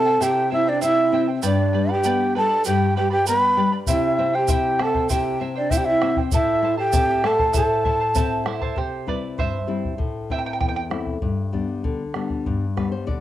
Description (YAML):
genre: andean folk, Andean ensemble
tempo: 98 BPM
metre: 2/4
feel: straight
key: unclear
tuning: A4 = 440 Hz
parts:
  - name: breathy mellow large quena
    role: melody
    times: 0.0-8.4 s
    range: D5 to B5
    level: -21 LUFS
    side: equal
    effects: cassette tape, analog delay
  - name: breathy bright large pan pipes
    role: second line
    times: 0.0-8.4 s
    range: D4 to B4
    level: -24 LUFS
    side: right 6 dB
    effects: cassette tape
  - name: charango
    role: accompaniment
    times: 0.0-10.8 s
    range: E4 to B5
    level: -29 LUFS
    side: right 7 dB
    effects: cassette tape
  - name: nylon-string guitar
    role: accompaniment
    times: 0.0-13.2 s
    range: E2 to D5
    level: -25 LUFS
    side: left 4 dB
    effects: cassette tape
  - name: tube shaker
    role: percussion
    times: 0.2-8.3 s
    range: none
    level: -32 LUFS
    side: right 8 dB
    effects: none
  - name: bombo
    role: percussion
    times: 3.9-13.2 s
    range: none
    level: -25 LUFS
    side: left 1 dB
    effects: none
room: moderate studio reverb, RT60 0.7 s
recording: home recording on cassette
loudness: -19 LUFS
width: side -12 dB against mid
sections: 0.0-8.8 A section; 8.8-13.2 B section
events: charango solo 8.8-13.2; nylon-string guitar fill 12.5-13.2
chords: 0.0 C; 1.4 G; 3.9 C; 6.3 Am; 8.8 C; 10.0 Am; 11.2 G